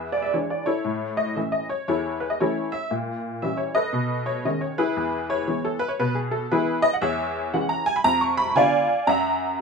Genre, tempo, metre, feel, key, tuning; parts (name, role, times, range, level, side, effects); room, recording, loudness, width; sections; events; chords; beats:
jazz, stride piano; 116 BPM; 4/4; swing 64% on 8ths; E major; A4 = 436 Hz
honky-tonk upright piano; solo; 0.0-9.6 s; E2 to C#6; -22 LUFS; equal
moderate studio reverb, RT60 0.5 s; minimal, uncompressed stereo recording; -21 LUFS; side -5 dB against mid
0.0-9.6 A section
0.0 E7; 0.8 A; 2.9 A#dim7; 3.9 B13; 5.0 E; 7.0 C#m/E; 8.1 Fdim7; 9.1 F#7
0.33 | 0.84 1.36 1.87 2.39 | 2.90 3.42 3.93 4.45 | 4.96 5.48 5.99 6.51 | 7.02 7.54 8.05 8.57 | 9.09 9.60